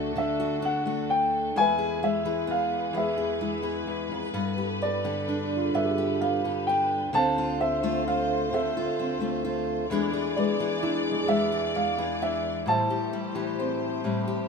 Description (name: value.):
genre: folk.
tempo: 43 BPM (dotted quarters).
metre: 6/8.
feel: straight.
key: unclear.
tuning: A4 = 440 Hz.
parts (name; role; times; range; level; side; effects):
dark upright piano; melody; 0.0-14.5 s; F#4 to A5; -27 LUFS; right 1 dB; none.
fingerpicked steel-string acoustic guitar; accompaniment; 0.0-14.5 s; E2 to G#4; -28 LUFS; left 3 dB; none.
warm chamber string section; sustained chords; 0.0-14.5 s; D2 to D5; -34 LUFS; left 1 dB; none.
concert harp; arpeggios; 3.4-14.5 s; G#3 to C5; -33 LUFS; right 5 dB; none.
room: light reverb.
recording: minimal, uncompressed stereo recording.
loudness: -24 LUFS.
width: side -5 dB against mid.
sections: 0.0-14.5 A section.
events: none.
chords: 0.0 D; 1.6 E; 4.3 Gadd9; 7.1 Dm7; 9.9 E7; 12.7 Am7.